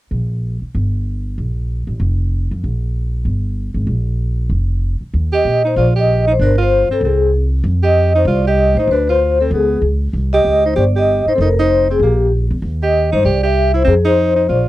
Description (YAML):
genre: jazz, small-group swing and bop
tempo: 192 BPM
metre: 4/4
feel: swing 60% on 8ths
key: Eb major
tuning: A4 = 443 Hz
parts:
  - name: upright bass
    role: bass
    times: 0.1-14.7 s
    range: F1 to Bb2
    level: -16 LUFS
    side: equal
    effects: none
  - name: vibraphone with soft mallets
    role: melody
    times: 5.3-14.7 s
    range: G4 to E5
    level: -14 LUFS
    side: left 2 dB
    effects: none
  - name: warm alto saxophone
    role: second line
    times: 5.3-14.7 s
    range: Bb3 to G4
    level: -20 LUFS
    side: right 5 dB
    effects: none
room: light reverb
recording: dry, close 1970s-style studio recording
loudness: -13 LUFS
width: side -15 dB against mid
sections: 0.1-5.1 A section; 5.1-14.7 B section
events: none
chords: 0.1 Gm; 1.4 Bb5; 2.6 Gm; 3.9 Bb5; 5.1 Eb; 6.4 Gm11; 7.0 Ab/C; 7.6 Fsus2; 8.9 Dm7; 9.5 Db5; 10.1 Cm; 11.4 F5; 12.0 Edim/Bb; 12.6 Eb; 13.3 C; 13.9 F5